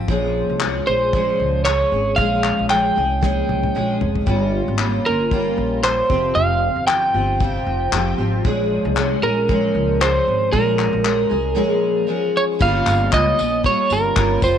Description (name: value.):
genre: acoustic pop.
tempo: 115 BPM.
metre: 4/4.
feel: swing 55% on 16ths.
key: unclear.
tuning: A4 = 440 Hz.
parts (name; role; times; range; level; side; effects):
picked steel-string acoustic guitar; accompaniment; 0.0-14.6 s; F2 to Ab4; -21 LUFS; left 1 dB; double-tracked left and right.
upright bass; bass; 0.0-14.6 s; F1 to Db2; -23 LUFS; equal; none.
cloth-damped thuddy drum kit; drums; 0.1-14.6 s; crash cymbal, handclaps, kick drum, snare drum, tambourine, toms; -23 LUFS; left 3 dB; none.
electric slide guitar; melody; 0.9-14.6 s; Bb4 to G5; -19 LUFS; right 2 dB; none.
room: light reverb.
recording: 1960s-style stereo.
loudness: -16 LUFS.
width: side -9 dB against mid.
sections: 0.0-12.6 A section; 12.6-14.6 B section.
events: drum fill 3.2-4.3.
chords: 0.1 Bbm7; 4.3 Gm7b5; 6.1 Fsus2; 8.4 Bbm7; 12.6 Gm7b5.